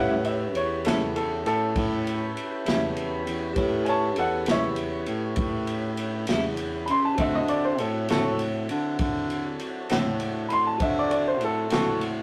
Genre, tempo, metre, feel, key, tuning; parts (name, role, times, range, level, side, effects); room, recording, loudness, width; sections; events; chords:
slow blues; 66 BPM (dotted quarters); 12/8; straight; A mixolydian; A4 = 440 Hz
bright upright piano; second line; 0.0-12.0 s; F#4 to C6; -30 LUFS; equal
bell-like tine electric piano; accompaniment; 0.0-12.2 s; F#4 to E5; -36 LUFS; equal
clean electric guitar; accompaniment; 0.0-11.9 s; A2 to F#4; -32 LUFS; equal; tremolo
tonewheel organ; sustained chords; 0.0-12.2 s; C4 to C#5; -39 LUFS; equal; slow rotary speaker
breathy baritone saxophone; bass; 0.0-12.2 s; E2 to D3; -31 LUFS; equal
vintage drum kit; drums; 0.2-12.1 s; kick drum, ride cymbal, snare drum; -33 LUFS; equal
warm horn section; sustained chords; 7.2-12.2 s; F#3 to F#4; -42 LUFS; equal
moderate studio reverb, RT60 0.6 s; rough rehearsal-room recording, warm saturation; -26 LUFS; mono
0.0-12.2 A section
upright piano solo 0.0-12.2
0.0 A7; 7.2 D7